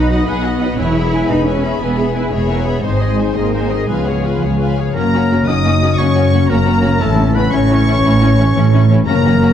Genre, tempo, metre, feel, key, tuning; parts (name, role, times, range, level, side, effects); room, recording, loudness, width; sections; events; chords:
cinematic, heroic adventure film score; 116 BPM (dotted quarters); 12/8; straight; A4 = 439 Hz
warm symphonic violin section; melody; 0.0-9.5 s; F#4 to D#6; -24 LUFS; left 4 dB
rich symphonic violin section; second line; 0.0-9.5 s; C#4 to C6; -25 LUFS; left 3 dB
clear symphonic viola section; accompaniment; 0.0-9.5 s; A3 to F#5; -23 LUFS; right 1 dB
concert harp; arpeggios; 0.0-9.5 s; E2 to C#6; -20 LUFS; left 6 dB
rich symphonic double bass section; bass; 0.0-9.5 s; E1 to Db2; -18 LUFS; right 3 dB
warm symphonic cello section; bass; 0.0-9.5 s; F#2 to E4; -19 LUFS; right 2 dB
mellow French horn section; sustained chords; 0.1-9.5 s; F#3 to D#4; -20 LUFS; left 4 dB
large flute ensemble; second line; 4.9-9.5 s; A4 to D#5; -25 LUFS; left 1 dB
warm oboe; second line; 5.0-9.5 s; A4 to D#5; -23 LUFS; right 1 dB
dark trombone section; sustained chords; 5.0-9.5 s; E3 to C#4; -21 LUFS; right 3 dB
moderate scoring stage reverb, RT60 1.8 s; dark, warm production; -12 LUFS; side -9 dB against mid
0.0-4.9 A section; 4.9-9.5 B section
0.0 B; 0.8 E; 2.8 Ab; 3.9 Db7; 4.9 F#; 7.0 A